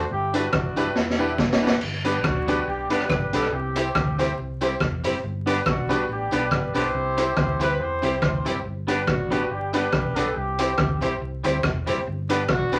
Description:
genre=ska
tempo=140 BPM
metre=4/4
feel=swing 56% on 8ths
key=unclear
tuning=A4 = 440 Hz
part: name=mellow horn section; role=melody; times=0.0-12.8 s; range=G3 to C5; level=-30 LUFS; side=equal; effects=none
part: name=twangy electric guitar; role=accompaniment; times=0.0-12.8 s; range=G3 to B4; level=-33 LUFS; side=equal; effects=none
part: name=honky-tonk upright piano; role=stabs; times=0.0-12.8 s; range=B3 to C5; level=-29 LUFS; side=equal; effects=none
part: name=hollow-body short-scale fingered electric bass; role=bass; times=0.0-12.8 s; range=E1 to E2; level=-33 LUFS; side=equal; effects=none
part: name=raw garage drum kit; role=drums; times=0.3-12.8 s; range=crash cymbal, hi-hat, kick drum, rim click, snare drum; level=-27 LUFS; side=equal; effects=none
part: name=tambourine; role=percussion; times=0.4-12.8 s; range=none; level=-50 LUFS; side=equal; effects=none
room=moderate club ambience, RT60 0.5 s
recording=vinyl crackle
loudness=-24 LUFS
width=mono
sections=0.0-1.8 A section; 1.8-12.8 B section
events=drum fill 1.0-1.8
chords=0.1 G6; 1.0 Em7; 1.8 G; 3.5 C; 5.2 G; 6.9 C; 8.6 G; 10.4 C; 12.1 G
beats=| 0.10 0.53 0.96 1.39 | 1.81 2.24 2.67 3.10 | 3.52 3.95 4.38 4.80 | 5.23 5.66 6.08 6.51 | 6.94 7.37 7.79 8.22 | 8.65 9.07 9.50 9.93 | 10.36 10.78 11.21 11.63 | 12.06 12.49

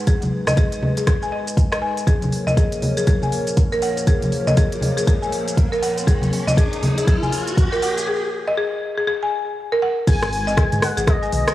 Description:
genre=afro house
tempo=120 BPM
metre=4/4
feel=swing 60% on 16ths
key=unclear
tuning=A4 = 440 Hz
part: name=dark analog pad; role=sustained chords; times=0.0-11.5 s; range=E#3 to C#5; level=-29 LUFS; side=equal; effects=wide subtle chorus, sidechain pumping
part: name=buzzing marimba with medium hard mallets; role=arpeggios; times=0.1-11.3 s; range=G#4 to G#5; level=-23 LUFS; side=left 1 dB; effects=sidechain pumping, low-pass filter, analog delay
part: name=afro-pop drum kit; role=drums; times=0.1-11.5 s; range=crash cymbal, hi-hat, rim click, shaker, toms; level=-27 LUFS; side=equal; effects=high-pass filter on hats, high-pass filter on toms, high-pass filter on perc, high-pass filter on snare, high-pass filter on cymbals
part: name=electronic kick drum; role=drums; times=0.1-11.2 s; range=none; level=-17 LUFS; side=equal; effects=none
part: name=congas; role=percussion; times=0.1-7.3 s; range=none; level=-23 LUFS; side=equal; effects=none
part: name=riser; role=sound effects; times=3.5-8.1 s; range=none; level=-30 LUFS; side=equal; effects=none
part: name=expressive portamento lead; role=melody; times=10.1-11.5 s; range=D#5 to G#5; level=-24 LUFS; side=left 2 dB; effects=analog chorus, analog delay
part: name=dark detuned saw bass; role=bass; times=10.1-11.4 s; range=G#1 to G#2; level=-24 LUFS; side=equal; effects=tube saturation, sidechain pumping
room=light reverb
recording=dry, gritty hardware recording, cassette tape, small room ambience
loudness=-17 LUFS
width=side -14 dB against mid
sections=0.0-10.1 A section; 10.1-11.5 B section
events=build-up 0.0-10.1; drum fill 0.0-8.1; riser 3.5-8.1; break 8.1-10.1; drop 10.1-11.5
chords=0.0 G#m; 2.1 A#m7; 10.1 G#m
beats=| 0.07 0.57 1.07 1.57 | 2.07 2.57 3.07 3.57 | 4.07 4.57 5.07 5.57 | 6.07 6.57 7.07 7.57 | 8.07 8.57 9.07 9.57 | 10.07 10.57 11.07

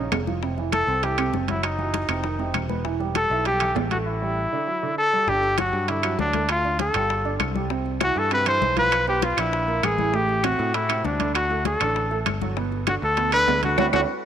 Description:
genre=Afro-Cuban jazz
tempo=198 BPM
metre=4/4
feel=straight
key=G major from 5.3 s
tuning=A4 = 439 Hz
part: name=breathy trumpet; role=melody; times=0.0-14.0 s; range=D4 to C5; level=-23 LUFS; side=left 1 dB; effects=none
part: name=dark baby grand piano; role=accompaniment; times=0.0-14.0 s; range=A2 to E5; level=-30 LUFS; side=right 9 dB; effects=none
part: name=picked electric bass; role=bass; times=0.0-14.0 s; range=E1 to A2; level=-28 LUFS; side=equal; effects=none
part: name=bongos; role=percussion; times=0.1-14.0 s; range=none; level=-35 LUFS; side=left 12 dB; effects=none
part: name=claves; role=percussion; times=0.1-14.0 s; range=none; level=-33 LUFS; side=left 13 dB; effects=none
part: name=congas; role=percussion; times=0.1-14.0 s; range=none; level=-32 LUFS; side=left 12 dB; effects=none
part: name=timbales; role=percussion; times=0.1-14.0 s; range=none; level=-30 LUFS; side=right 12 dB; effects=none
room=moderate plate reverb, RT60 3.0 s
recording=1960s-style stereo with parts hard left and right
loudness=-20 LUFS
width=side -9 dB against mid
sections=0.0-5.3 A section; 5.3-14.3 B section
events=band accent 13.8-14.3; drum fill 14.1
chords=0.4 Fmaj7(no3); 2.2 F5; 2.8 Em; 4.1 A5; 4.7 Dadd9; 5.3 Gsus2; 6.5 Dm; 7.1 G5; 7.7 Cmaj7; 8.9 Bdim; 9.5 Bb7; 10.1 Am7; 11.3 D; 12.6 G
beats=0.12 | 0.42 0.72 1.03 1.33 | 1.63 1.94 2.24 2.54 | 2.85 3.15 3.46 3.76 | 4.06 4.37 4.67 4.97 | 5.28 5.58 5.88 6.19 | 6.49 6.79 7.10 7.40 | 7.71 8.01 8.31 8.62 | 8.92 9.22 9.53 9.83 | 10.13 10.44 10.74 11.05 | 11.35 11.65 11.96 12.26 | 12.56 12.87 13.17 13.48 | 13.78

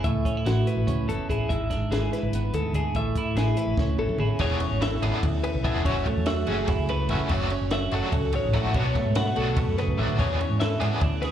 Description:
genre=math rock and midwest emo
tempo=290 BPM (eighths)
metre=7/8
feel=straight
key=unclear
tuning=A4 = 442 Hz
part: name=twelve-string electric guitar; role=accompaniment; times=0.0-11.3 s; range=E2 to B4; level=-28 LUFS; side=right 4 dB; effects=none
part: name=twelve-string electric guitar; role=arpeggios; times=0.0-11.3 s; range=F#4 to F#5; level=-31 LUFS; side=left 4 dB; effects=tape echo, slapback echo
part: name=hollow-body short-scale fingered electric bass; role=bass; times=0.0-11.3 s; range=E1 to G#2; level=-27 LUFS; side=equal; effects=none
part: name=compact cocktail drum kit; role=drums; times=0.0-11.3 s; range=crash cymbal, hi-hat, kick drum, ride cymbal, snare drum, toms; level=-30 LUFS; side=equal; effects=none
part: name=biting overdriven guitar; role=riff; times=4.4-11.3 s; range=E3 to G#4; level=-31 LUFS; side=left 1 dB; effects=tremolo, slapback echo
room=small room ambience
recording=live gig heard through the venue's PA, club reverb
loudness=-22 LUFS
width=side -10 dB against mid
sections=0.0-4.4 A section; 4.4-11.3 B section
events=drum fill 3.8-4.4, 9.9-10.2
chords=0.0 A6; 1.5 E7/G#; 3.0 Amaj7; 4.4 E6; 5.9 F#m11; 7.3 Dmaj9/F#; 8.7 Bm9; 10.2 E6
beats=| 0.04 0.25 0.46 0.66 0.87 1.08 1.29 | 1.50 1.71 1.91 2.12 2.33 2.54 2.74 | 2.95 3.16 3.37 3.58 3.78 3.99 4.20 | 4.40 4.61 4.82 5.03 5.23 5.44 5.64 | 5.85 6.06 6.26 6.47 6.68 6.89 7.09 | 7.30 7.51 7.71 7.92 8.13 8.33 8.54 | 8.74 8.95 9.16 9.37 9.57 9.78 9.98 | 10.19 10.40 10.61 10.81 11.02 11.22

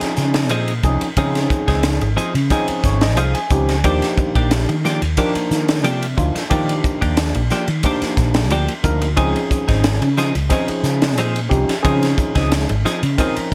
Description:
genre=electric jazz fusion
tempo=90 BPM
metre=4/4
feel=swing 53% on 16ths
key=unclear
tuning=A4 = 440 Hz
part: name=overdriven tine electric piano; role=accompaniment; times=0.0-13.5 s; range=F3 to Ab5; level=-24 LUFS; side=equal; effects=lush chorus
part: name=clean electric guitar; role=stabs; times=0.0-13.4 s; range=F3 to Ab4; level=-26 LUFS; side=equal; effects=analog chorus
part: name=fretless electric bass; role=bass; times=0.0-13.5 s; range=Ab1 to Eb3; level=-22 LUFS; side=equal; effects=ensemble chorus
part: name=crisp fusion drum kit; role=drums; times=0.0-13.5 s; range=hi-hat, kick drum, ride cymbal, snare drum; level=-23 LUFS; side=equal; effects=none
room=studio reverb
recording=none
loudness=-18 LUFS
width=mono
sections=0.0-13.5 A section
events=tine electric piano fill 2.5-3.8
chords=0.0 Dbmaj9; 3.8 Ebmaj9; 9.2 Dbmaj9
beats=0.51 | 1.18 1.84 2.51 3.18 | 3.85 4.51 5.18 5.85 | 6.51 7.18 7.85 8.51 | 9.18 9.85 10.51 11.18 | 11.85 12.51 13.18

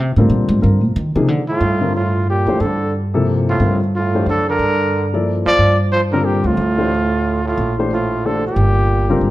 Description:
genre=modal jazz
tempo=181 BPM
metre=3/4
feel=swing 62% on 8ths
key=G dorian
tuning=A4 = 440 Hz
part: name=upright bass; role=bass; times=0.0-9.3 s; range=G1 to Eb3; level=-18 LUFS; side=right 1 dB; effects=none
part: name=dark grand piano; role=accompaniment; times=0.2-9.3 s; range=C3 to D5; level=-20 LUFS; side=left 2 dB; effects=none
part: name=mellow trumpet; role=melody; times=1.5-9.3 s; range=F4 to D5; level=-19 LUFS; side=right 1 dB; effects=none
part: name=bright trombone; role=second line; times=1.5-9.3 s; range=A2 to F3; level=-23 LUFS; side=right 2 dB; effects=none
room=wet large studio reverb, RT60 1.4 s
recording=none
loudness=-14 LUFS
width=side -16 dB against mid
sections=0.0-1.6 A section; 1.6-9.3 B section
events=upright bass solo 0.0-1.6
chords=0.0 F9sus4; 1.6 Gm9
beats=0.29 | 0.62 0.95 1.28 | 1.61 1.94 2.27 | 2.60 2.94 3.27 | 3.60 3.93 4.26 | 4.59 4.92 5.25 | 5.59 5.92 6.25 | 6.58 6.91 7.24 | 7.57 7.90 8.23 | 8.56 8.89 9.22

